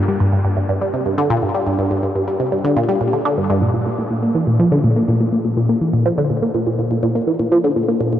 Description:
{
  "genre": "ambient",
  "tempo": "123 BPM",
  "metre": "4/4",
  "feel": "straight",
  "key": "G dorian",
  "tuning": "A4 = 440 Hz",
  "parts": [
    { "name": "resonant blip pluck", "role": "solo", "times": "0.1-8.2 s", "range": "G2 to Bb3", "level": "-15 LUFS", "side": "equal", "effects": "phaser, ping-pong delay" }
  ],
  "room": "wet huge ambient reverb, RT60 8.8 s",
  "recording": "worn, warbling old tape, cassette tape, warbly pitch drift",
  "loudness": "-15 LUFS",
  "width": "side -11 dB against mid",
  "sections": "0.0-3.6 A section; 3.6-8.2 B section",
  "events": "none",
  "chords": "none",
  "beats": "0.20 0.69 1.18 | 1.67 2.15 2.64 3.13 | 3.62 4.11 4.59 5.08 | 5.57 6.06 6.54 7.03 | 7.52 8.01"
}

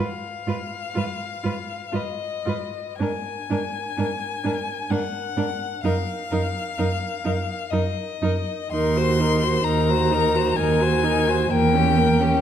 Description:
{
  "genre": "classical, slow romantic movement for string quartet",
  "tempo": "64 BPM",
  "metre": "3/4",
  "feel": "uneven beats, rubato",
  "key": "Eb minor",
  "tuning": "A4 = 440 Hz",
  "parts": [
    { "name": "rich violin", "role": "melody", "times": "0.0-12.4 s", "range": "Eb5 to C6", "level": "-27 LUFS", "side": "left 8 dB", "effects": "none" },
    { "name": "rich violin", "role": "second line", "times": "0.0-12.4 s", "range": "G4 to C5", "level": "-27 LUFS", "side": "left 2 dB", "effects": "none" },
    { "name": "rich viola", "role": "accompaniment", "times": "0.0-12.4 s", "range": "Bb3 to Gb4", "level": "-27 LUFS", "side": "right 2 dB", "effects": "none" },
    { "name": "rich cello", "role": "bass", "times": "0.0-12.3 s", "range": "Eb2 to Ab2", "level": "-25 LUFS", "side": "right 3 dB", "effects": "none" }
  ],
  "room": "wet recital hall reverb, RT60 1.6 s",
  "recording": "dark, warm production",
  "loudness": "-21 LUFS",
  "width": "side -9 dB against mid",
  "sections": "0.0-12.4 A section",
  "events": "none",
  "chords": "0.0 Fm/Ab; 3.0 Bb7/Ab (rootless); 5.8 Ebm/Gb; 8.7 Cm7b5/Eb; 11.5 Edim7",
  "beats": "0.97 1.94 | 3.01 3.98 4.91 | 5.84 6.78 7.71 | 8.72 9.65 10.58 | 11.51"
}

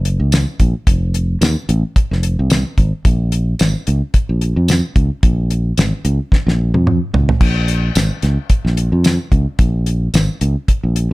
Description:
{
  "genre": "straight-eighth soul blues",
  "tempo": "110 BPM",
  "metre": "4/4",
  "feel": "swing 55% on 16ths",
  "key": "Bb minor",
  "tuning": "A4 = 441 Hz",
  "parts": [
    { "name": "fingered electric bass", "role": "bass", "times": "0.0-11.1 s", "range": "F1 to F2", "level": "-15 LUFS", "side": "equal", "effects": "none" },
    { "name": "damped 70s drum kit", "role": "drums", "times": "0.1-11.1 s", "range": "crash cymbal, hi-hat, kick drum, snare drum, tambourine, toms", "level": "-15 LUFS", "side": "equal", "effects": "none" }
  ],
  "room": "light reverb",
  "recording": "none",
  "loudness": "-13 LUFS",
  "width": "side -20 dB against mid",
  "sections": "0.0-7.4 A section; 7.4-11.1 B section",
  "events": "drum fill 6.3-7.4",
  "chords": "none",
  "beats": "0.33 | 0.87 1.42 1.96 2.51 | 3.05 3.60 4.14 4.69 | 5.23 5.78 6.33 6.87 | 7.42 7.96 8.51 9.05 | 9.60 10.14 10.69"
}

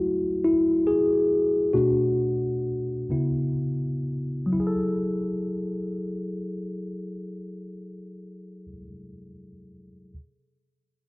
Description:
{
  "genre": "R&B",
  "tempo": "39-48 BPM (dotted quarters)",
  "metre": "6/8",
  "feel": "straight",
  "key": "F# minor",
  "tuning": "A4 = 439 Hz",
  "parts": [
    { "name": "tine electric piano", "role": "accompaniment", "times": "0.0-10.1 s", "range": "B2 to A4", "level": "-24 LUFS", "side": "left 1 dB", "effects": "phaser, low-pass filter" }
  ],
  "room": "wet spring reverb, RT60 2.5 s",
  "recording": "dark, warm production",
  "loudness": "-23 LUFS",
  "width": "side -24 dB against mid",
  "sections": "0.0-4.6 A section; 4.6-7.6 B section",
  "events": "slowing down 0.0-4.6; tine electric piano solo 0.0-4.6; filter sweep on tine electric piano 0.0-4.6",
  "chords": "0.0 F#m9; 1.7 Bm7; 3.1 C#m7; 4.6 F#m9",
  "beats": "0.46 | 1.74 3.10 | 4.56 6.09"
}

